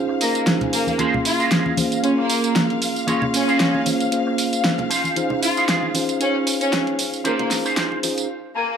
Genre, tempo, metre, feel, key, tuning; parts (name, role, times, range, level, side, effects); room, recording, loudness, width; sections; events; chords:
nu-disco, nu disco; 115 BPM; 4/4; swing 55% on 16ths; A4 = 439 Hz
mellow tine electric piano; accompaniment; 0.0-8.3 s; Bb3 to C6; -23 LUFS; right 1 dB; slow stereo tremolo
dark studio string section; sustained chords; 0.0-8.3 s; F5; -29 LUFS; left 3 dB
electric guitar with an envelope filter; riff; 0.1-8.8 s; Db4 to Ab5; -26 LUFS; right 2 dB; ensemble chorus, low-pass filter
rich chamber violin section; melody; 0.2-8.7 s; Bb3 to F4; -24 LUFS; left 1 dB; tape echo
pop drum kit; drums; 0.2-8.3 s; hi-hat, snare drum, tambourine; -22 LUFS; right 1 dB
congas; percussion; 0.6-8.2 s; -29 LUFS; left 2 dB
wet plate reverb, RT60 1.1 s; dark, warm production, high-pass filter; -18 LUFS; side -7 dB against mid
0.0-8.8 A section
build-up 0.0-8.8; clean electric guitar fill 0.0-1.0, 8.3-8.8; break 8.3-8.8
0.0 Dbmaj9; 1.0 Bbm9; 4.9 Dbmaj9